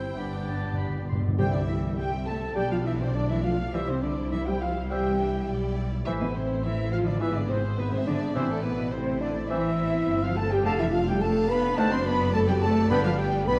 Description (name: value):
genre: quick classical-period movement for symphony orchestra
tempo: 104 BPM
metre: 4/4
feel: rubato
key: C major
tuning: A4 = 440 Hz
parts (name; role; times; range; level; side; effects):
- rich studio violin section; melody; 0.0-13.6 s; B4 to G5; -45 LUFS; equal; none
- hollow concert flute; second line; 0.0-13.5 s; A4 to G6; -39 LUFS; equal; none
- mellow clarinet; second line; 0.0-13.1 s; D4 to D5; -40 LUFS; equal; none
- rich chamber violin section; second line; 0.0-13.6 s; E4 to C6; -41 LUFS; equal; none
- warm bassoon; accompaniment; 0.0-13.1 s; D3 to C4; -40 LUFS; equal; none
- warm symphonic viola section; accompaniment; 0.0-13.6 s; E3 to G#4; -39 LUFS; equal; none
- mellow French horn section; sustained chords; 0.0-13.6 s; A3 to C5; -32 LUFS; equal; none
- dark trumpet section; stabs; 0.0-13.6 s; A4 to C6; -39 LUFS; equal; none
- rich chamber cello section; bass; 0.0-13.6 s; G2 to C4; -33 LUFS; equal; none
- warm chamber double bass section; bass; 0.0-13.6 s; F1 to C2; -33 LUFS; equal; none
- clear oboe; second line; 0.2-13.1 s; E5 to C6; -44 LUFS; equal; none
- timpani; percussion; 0.2-2.2, 12.9-13.6 s; G2 to C3; -33 LUFS; equal; none
room: wet scoring stage reverb, RT60 2.0 s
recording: dark, warm production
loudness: -26 LUFS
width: mono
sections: 0.0-1.4 A section; 1.4-13.6 B section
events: timpani fill 0.2-1.4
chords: 0.2 G; 1.4 C; 2.6 G/B; 3.7 C; 6.1 Am; 7.2 E/G#; 8.4 Am; 10.7 Dm/F; 11.8 F#dim7; 12.9 G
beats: 0.17 0.79 | 1.39 1.98 2.56 3.15 | 3.74 4.33 4.91 5.49 | 6.07 6.64 7.21 7.78 | 8.36 8.93 9.50 10.08 | 10.66 11.22 11.78 12.34 | 12.90 13.47